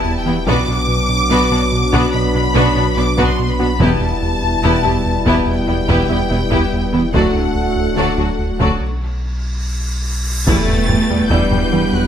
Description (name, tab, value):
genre	cinematic, hybrid orchestral and electronic film score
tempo	72 BPM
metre	4/4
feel	straight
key	E minor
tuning	A4 = 440 Hz
part	clear symphonic violin section	melody	0.0-12.1 s	F#5 to A6	-22 LUFS	left 3 dB	none
part	clear symphonic violin section	second line	0.0-12.1 s	B3 to G5	-25 LUFS	left 1 dB	none
part	clear symphonic viola section	accompaniment	0.0-11.8 s	F#3 to F#4	-22 LUFS	left 1 dB	none
part	dark French horn section	sustained chords	0.0-12.1 s	F#3 to F#4	-26 LUFS	left 4 dB	none
part	dark trombone section	sustained chords	0.0-12.1 s	A2 to A3	-25 LUFS	right 4 dB	none
part	hollow soft pad	sustained chords	0.0-12.1 s	F#3 to B4	-25 LUFS	equal	chorus
part	rubbery square bass	riff	0.0-12.1 s	D2 to B3	-22 LUFS	right 2 dB	none
part	pure sine sub bass	bass	0.0-12.1 s	D1 to B1	-23 LUFS	equal	none
part	warm concert grand piano	texture	0.0-12.1 s	D4 to G5	-31 LUFS	left 2 dB	none
part	tight sequenced synth	arpeggios	0.3-11.9 s	D3 to B4	-25 LUFS	left 1 dB	none
part	rich symphonic cello section	bass	0.3-12.1 s	D2 to A3	-23 LUFS	right 1 dB	none
part	clear symphonic double bass section	bass	0.5-11.8 s	E1 to E2	-24 LUFS	right 2 dB	none
part	taiko ensemble	drums	0.5-12.1 s	none	-22 LUFS	equal	none
part	cymbal swell and impact	sound effects	9.4-12.1 s	none	-25 LUFS	equal	none
room	moderate scoring stage reverb, RT60 1.8 s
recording	none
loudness	-14 LUFS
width	side -9 dB against mid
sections	0.0-10.5 A section; 10.5-12.1 B section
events	break 8.8-10.5; cymbal swell 9.4-10.5; drum fill 9.6-10.5; impact 10.5-12.1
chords	0.5 Bm; 3.8 Em; 7.1 D; 8.8 N.C.; 10.5 Em